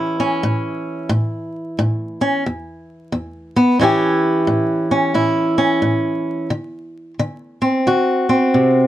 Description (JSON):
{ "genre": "blues", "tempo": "89 BPM", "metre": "4/4", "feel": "swing 62% on 8ths", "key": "A mixolydian", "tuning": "A4 = 440 Hz", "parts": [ { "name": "fingerpicked swing-style acoustic guitar", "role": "solo", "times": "0.0-8.9 s", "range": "E2 to G4", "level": "-16 LUFS", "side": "equal", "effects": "none" } ], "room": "little or no reverb", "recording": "close, detailed microphones, vinyl crackle", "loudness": "-16 LUFS", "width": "side -13 dB against mid", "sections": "0.0-3.8 A section; 3.8-8.9 B section", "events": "none", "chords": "0.0 A7; 2.5 E5; 3.8 A7; 6.5 D7" }